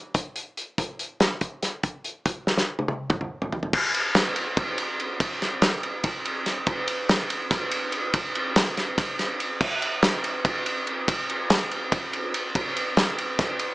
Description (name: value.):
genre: rock.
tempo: 286 BPM (eighths).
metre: 7/8.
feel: straight.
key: none.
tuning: none.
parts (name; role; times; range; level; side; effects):
loose indie drum kit; drums; 0.1-13.7 s; crash cymbal, hi-hat, kick drum, ride cymbal, snare drum, toms; -23 LUFS; equal; none.
room: moderate studio ambience, RT60 0.5 s.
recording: small speaker sound.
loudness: -23 LUFS.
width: side -19 dB against mid.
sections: 0.0-3.7 A section; 3.7-13.7 B section.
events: drum fill 2.5-3.7.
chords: none.